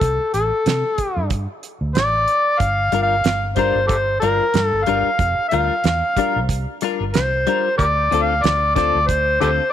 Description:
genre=straight-eighth soul blues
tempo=93 BPM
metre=4/4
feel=swing 56% on 16ths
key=D minor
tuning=A4 = 440 Hz
part: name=overdriven harmonica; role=melody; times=0.0-9.7 s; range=G4 to F5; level=-18 LUFS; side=left 1 dB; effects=none
part: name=vintage muted fingered electric bass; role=bass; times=0.0-9.6 s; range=F1 to C3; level=-23 LUFS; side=right 1 dB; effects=none
part: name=damped 70s drum kit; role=drums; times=0.0-9.6 s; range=hi-hat, kick drum, snare drum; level=-22 LUFS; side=right 4 dB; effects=none
part: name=direct-recorded clean electric guitar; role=stabs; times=2.9-9.6 s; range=D3 to Bb4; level=-24 LUFS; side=left 11 dB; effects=wide subtle chorus
room=light reverb, small room ambience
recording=1960s-style stereo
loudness=-16 LUFS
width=side -10 dB against mid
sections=0.0-9.7 A section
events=none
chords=0.0 D5; 2.6 Gm7; 7.8 Dm7

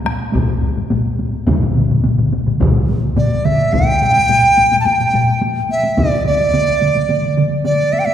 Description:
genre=japanese traditional, taiko drum ensemble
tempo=107 BPM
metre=4/4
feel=straight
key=unclear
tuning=A4 = 440 Hz
part: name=solo taiko drums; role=percussion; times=0.1-5.3 s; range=none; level=-19 LUFS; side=left 3 dB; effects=none
part: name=taiko ensemble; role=percussion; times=0.1-8.1 s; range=none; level=-23 LUFS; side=equal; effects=none
part: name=taiko ensemble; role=percussion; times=0.3-6.1 s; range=none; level=-19 LUFS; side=equal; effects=none
part: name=taiko ensemble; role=percussion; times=1.5-7.5 s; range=none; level=-20 LUFS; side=right 2 dB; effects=none
part: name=dizi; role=melody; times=3.2-8.1 s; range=D5 to A5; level=-14 LUFS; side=right 1 dB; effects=none
room=wet concert hall reverb, RT60 2.5 s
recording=recorded in a church or concert hall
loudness=-12 LUFS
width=side -10 dB against mid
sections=0.0-3.7 A section; 3.7-8.1 B section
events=none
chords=none

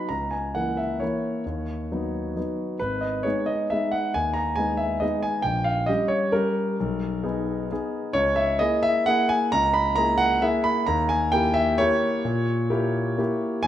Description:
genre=classical, piano waltz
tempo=123-143 BPM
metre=3/4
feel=rubato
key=unclear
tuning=A4 = 440 Hz
part: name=dark concert grand piano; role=solo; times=0.0-13.7 s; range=G#1 to B5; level=-22 LUFS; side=equal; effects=none
room=moderate recital hall reverb, RT60 1.8 s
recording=none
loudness=-22 LUFS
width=side -11 dB against mid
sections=0.0-13.7 A section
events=none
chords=0.1 A#dim/C#; 1.5 B/D#; 2.8 G#m; 5.5 Gdim/Bb; 6.8 G#m/B; 8.2 A#m7b5/C#; 10.9 D#7b9

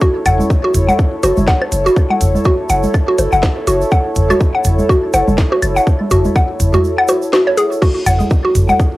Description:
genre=minimal techno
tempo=123 BPM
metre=4/4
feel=swing 57% on 16ths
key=F# minor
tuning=A4 = 440 Hz
part: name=mallet-like synth pluck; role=riff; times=0.0-8.7 s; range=F#4 to F#5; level=-15 LUFS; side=equal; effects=chorus, cassette tape, sidechain pumping, tape echo
part: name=electronic kick drum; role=drums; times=0.0-8.9 s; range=none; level=-14 LUFS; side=equal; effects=cassette tape
part: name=tube shaker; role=percussion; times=0.0-8.9 s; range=none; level=-32 LUFS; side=right 8 dB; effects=none
part: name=warbly tape-like pad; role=texture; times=0.0-9.0 s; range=E4 to C#5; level=-20 LUFS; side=equal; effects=chorus, built-in reverb, sidechain pumping, cassette tape
part: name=punchy sub bass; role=bass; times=0.3-8.7 s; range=F#1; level=-18 LUFS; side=equal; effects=sidechain pumping
part: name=garage drum kit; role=drums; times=0.3-8.7 s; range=crash cymbal, hi-hat, snare drum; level=-24 LUFS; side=equal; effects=cassette tape
part: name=electronic toms, woodblock, congas and bongos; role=percussion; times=0.3-8.8 s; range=none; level=-17 LUFS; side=equal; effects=overdrive, cassette tape
room=moderate studio ambience, RT60 0.5 s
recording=home recording on cassette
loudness=-11 LUFS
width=side -18 dB against mid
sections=0.0-9.0 A section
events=kick drops out 6.8-7.8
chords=0.0 F#m

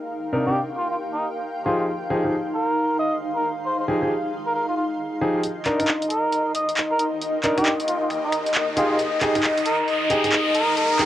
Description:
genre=UK garage, two-step garage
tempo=135 BPM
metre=4/4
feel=swing 63% on 16ths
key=C minor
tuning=A4 = 440 Hz
part: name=warm analog pad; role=sustained chords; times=0.0-11.1 s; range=Eb5 to F5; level=-28 LUFS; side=left 1 dB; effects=chorus, cassette tape
part: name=granular cloud pad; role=texture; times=0.0-11.1 s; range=Eb4 to C6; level=-29 LUFS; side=equal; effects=built-in reverb, cassette tape
part: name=warm concert grand piano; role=stabs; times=0.3-11.1 s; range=C3 to Bb4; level=-23 LUFS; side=equal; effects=low-pass filter, cassette tape, tape echo
part: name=trumpet with cup mute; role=melody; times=0.5-11.1 s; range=Eb4 to Eb5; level=-25 LUFS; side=equal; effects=low-pass filter, tape echo
part: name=punchy analog drum machine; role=drums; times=5.4-11.1 s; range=finger snaps, handclaps, hi-hat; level=-25 LUFS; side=equal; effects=low-pass filter on hats, cassette tape, low-pass filter on snare, low-pass filter on cymbals
part: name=riser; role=sound effects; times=7.2-11.1 s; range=none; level=-28 LUFS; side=equal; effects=none
room=moderate booth ambience, RT60 0.2 s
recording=home recording on cassette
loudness=-20 LUFS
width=side -12 dB against mid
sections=0.0-5.4 A section; 5.4-11.1 B section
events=build-up 5.4-11.1; filter sweep on grand piano 5.4-11.1; riser 7.2-11.1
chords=0.0 Cm7; 1.7 Fm7; 5.4 Cm7; 8.8 Fm7

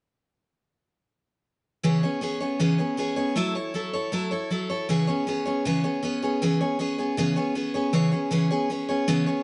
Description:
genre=rock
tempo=158 BPM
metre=4/4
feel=straight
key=E major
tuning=A4 = 440 Hz
part: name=picked steel-string acoustic guitar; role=solo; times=1.8-9.4 s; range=C#3 to C#5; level=-26 LUFS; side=equal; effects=none
room=moderate echo chamber reverb, RT60 2.0 s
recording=nothing above 10.7 kHz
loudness=-26 LUFS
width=mono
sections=1.8-7.9 A section; 7.9-9.4 B section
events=none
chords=1.8 E6; 3.4 A6; 4.9 E6

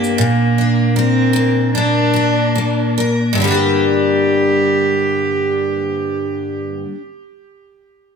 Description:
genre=pop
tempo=71-80 BPM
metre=4/4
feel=swing 55% on 16ths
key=G minor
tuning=A4 = 442 Hz
part: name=warm cello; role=melody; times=0.0-6.7 s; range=Bb3 to G4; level=-18 LUFS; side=right 1 dB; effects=digital delay
part: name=picked steel-string acoustic guitar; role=accompaniment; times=0.0-7.0 s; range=G2 to Bb4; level=-16 LUFS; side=left 1 dB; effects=double-tracked left and right
room=moderate studio reverb, RT60 0.9 s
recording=none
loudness=-13 LUFS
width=side -6 dB against mid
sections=0.0-3.4 A section; 3.4-6.8 B section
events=slowing down 0.0-3.4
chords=0.2 Bb

